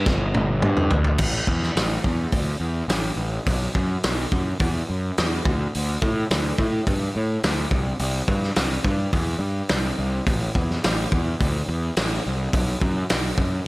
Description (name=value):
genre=quiet-loud alternative rock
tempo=106 BPM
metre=4/4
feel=straight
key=A dorian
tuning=A4 = 442 Hz
part: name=fuzz picked electric bass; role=bass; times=0.0-13.6 s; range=G1 to A2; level=-24 LUFS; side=equal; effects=overdrive
part: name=loose indie drum kit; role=drums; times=0.1-13.5 s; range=crash cymbal, hi-hat, kick drum, snare drum, toms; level=-23 LUFS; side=equal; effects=none
room=little or no reverb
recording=none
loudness=-20 LUFS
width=side -22 dB against mid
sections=0.0-1.2 A section; 1.2-13.7 B section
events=drum fill 0.1-1.2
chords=none